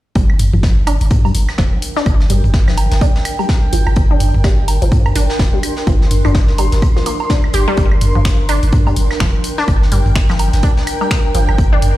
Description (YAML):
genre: minimal techno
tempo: 126 BPM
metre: 4/4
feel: swing 59% on 16ths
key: G minor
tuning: A4 = 443 Hz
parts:
  - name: resonant blip pluck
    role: riff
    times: 0.2-11.8 s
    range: F3 to G4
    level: -22 LUFS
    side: left 1 dB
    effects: phaser, sidechain pumping, digital delay
  - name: punchy sub bass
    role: bass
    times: 0.2-11.9 s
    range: F1 to G2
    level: -15 LUFS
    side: equal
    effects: sidechain pumping
  - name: electronic kick drum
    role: drums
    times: 0.2-11.7 s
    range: none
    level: -14 LUFS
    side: equal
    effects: overdrive
  - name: vintage brush drum kit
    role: drums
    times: 0.2-12.0 s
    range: hi-hat, snare drum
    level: -29 LUFS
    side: left 1 dB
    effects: high-pass filter on hats, high-pass filter on snare, high-pass filter on room
  - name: granular cloud pad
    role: texture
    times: 1.4-12.0 s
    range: D4 to C6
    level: -23 LUFS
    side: right 1 dB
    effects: built-in reverb, sidechain pumping
  - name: electronic claves, toms and woodblock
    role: percussion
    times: 0.3-11.9 s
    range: none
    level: -21 LUFS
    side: right 2 dB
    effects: ping-pong delay
  - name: house drum kit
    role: drums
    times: 0.4-11.9 s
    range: finger snaps, hi-hat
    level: -25 LUFS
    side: left 2 dB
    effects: overdrive
room: light reverb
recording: played on a big sound system in a bare room, stone room reverb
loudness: -11 LUFS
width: side -16 dB against mid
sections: 0.2-12.0 A section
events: none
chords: 0.2 Gm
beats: | 0.16 0.63 1.11 1.59 | 2.06 2.54 3.01 3.49 | 3.97 4.44 4.92 5.39 | 5.87 6.35 6.82 7.30 | 7.78 8.25 8.73 9.21 | 9.68 10.16 10.63 11.11 | 11.59